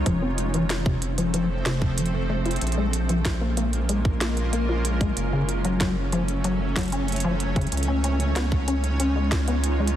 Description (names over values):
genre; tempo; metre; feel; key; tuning
IDM; 94 BPM; 4/4; straight; unclear; A4 = 440 Hz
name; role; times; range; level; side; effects
granular cloud pad; sustained chords; 0.0-10.0 s; F3 to Db5; -29 LUFS; right 1 dB; built-in reverb, vintage 12-bit sampler grit
round analog bass; bass; 0.0-10.0 s; F1 to Db2; -26 LUFS; equal; none
deep acid bass; arpeggios; 0.1-9.9 s; C3 to F4; -27 LUFS; left 2 dB; wide subtle chorus, cassette tape, tape echo
electronic kick drum; drums; 0.1-9.4 s; none; -25 LUFS; equal; overdrive
glitchy drum kit; drums; 0.1-10.0 s; hi-hat, snare drum; -31 LUFS; right 1 dB; overdrive
room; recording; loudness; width
moderate echo chamber reverb, RT60 2.1 s; dense, heavily limited modern master; -22 LUFS; side -11 dB against mid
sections
0.0-10.0 A section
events
none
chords
0.1 F; 2.6 Bbm7; 5.2 Gbm; 7.7 Dbadd9